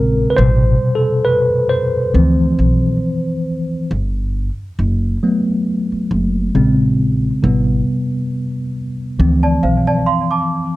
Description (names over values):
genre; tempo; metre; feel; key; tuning
lo-fi hip hop; 68 BPM; 4/4; swing 56% on 16ths; G major; A4 = 436 Hz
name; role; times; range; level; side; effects
mellow tine electric piano; accompaniment; 0.0-10.8 s; B2 to C5; -15 LUFS; equal; medium stereo tremolo, cassette tape
upright bass; bass; 0.0-10.0 s; F#1 to D2; -16 LUFS; equal; none
celesta; second line; 9.4-10.8 s; C5 to D6; -18 LUFS; right 3 dB; analog delay
room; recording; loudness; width
moderate studio reverb, RT60 0.6 s; none; -14 LUFS; side -17 dB against mid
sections
0.0-10.8 A section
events
tine electric piano solo 0.0-10.8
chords
0.4 Am7; 2.1 Dm7; 3.9 Gmaj7; 6.6 Bbm7; 7.4 Am7; 9.2 Dm7